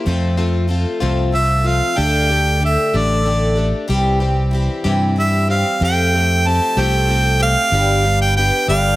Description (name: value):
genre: folk rock and heartland rock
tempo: 63 BPM (dotted quarters)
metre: 6/8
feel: straight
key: unclear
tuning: A4 = 440 Hz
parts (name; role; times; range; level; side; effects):
- picked plugged-in twelve-string acoustic guitar; accompaniment; 0.0-9.0 s; F2 to G4; -20 LUFS; left 2 dB; none
- fingered electric bass; bass; 0.1-9.0 s; G1 to G2; -17 LUFS; equal; none
- clear harmonica; melody; 1.3-9.0 s; D5 to A5; -18 LUFS; right 1 dB; tape echo
room: light reverb, small room ambience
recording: none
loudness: -14 LUFS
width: side -17 dB against mid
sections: 0.1-7.7 A section; 7.7-9.0 B section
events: none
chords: 0.1 F; 2.0 Dsus4; 3.9 C; 5.8 Fadd9; 7.7 G